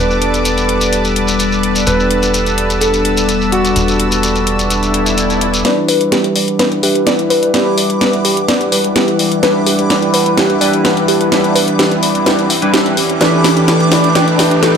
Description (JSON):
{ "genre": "progressive house", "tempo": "127 BPM", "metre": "4/4", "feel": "straight", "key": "E minor", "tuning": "A4 = 440 Hz", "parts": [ { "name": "warm concert grand piano", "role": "melody", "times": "0.0-5.6 s", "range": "F#4 to B4", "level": "-20 LUFS", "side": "right 1 dB", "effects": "ping-pong delay" }, { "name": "supersaw pad", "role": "sustained chords", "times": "0.0-14.8 s", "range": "E3 to E6", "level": "-19 LUFS", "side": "right 1 dB", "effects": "low-pass filter" }, { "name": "chorused polysynth", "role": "stabs", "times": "0.0-14.8 s", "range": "E3 to B4", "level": "-15 LUFS", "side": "left 1 dB", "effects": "ping-pong delay" }, { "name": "tight sequencer bass", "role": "bass", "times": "0.0-5.6 s", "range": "E1", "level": "-20 LUFS", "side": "equal", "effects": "none" }, { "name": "shekere", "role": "percussion", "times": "0.1-5.6 s", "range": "none", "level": "-21 LUFS", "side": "left 2 dB", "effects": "none" }, { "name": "house drum kit", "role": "drums", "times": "0.2-14.8 s", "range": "hi-hat, snare drum", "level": "-16 LUFS", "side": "left 1 dB", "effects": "none" }, { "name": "swell and riser", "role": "sound effects", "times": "4.8-14.8 s", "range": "none", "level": "-23 LUFS", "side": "equal", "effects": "none" }, { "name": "glassy wavetable pluck", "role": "arpeggios", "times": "5.7-14.7 s", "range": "D4 to E5", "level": "-18 LUFS", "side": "right 1 dB", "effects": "chorus, ping-pong delay" }, { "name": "backwards swelling texture", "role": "texture", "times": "6.4-14.8 s", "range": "D6", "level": "-24 LUFS", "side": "right 2 dB", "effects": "built-in reverb" } ], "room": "light reverb", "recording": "none", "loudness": "-10 LUFS", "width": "side -7 dB against mid", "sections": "0.0-5.7 A section; 5.7-14.8 B section", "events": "swell 4.8-5.7; build-up 5.7-14.8; drum fill 5.7-14.8; riser 5.7-14.8; filter sweep on synth arpeggio sound 5.7-14.8; filter sweep on analog polysynth 5.7-14.8; filter sweep on supersaw synth 5.7-14.8", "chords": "0.0 Gadd9/E; 5.7 Em7; 13.2 Gadd9/E" }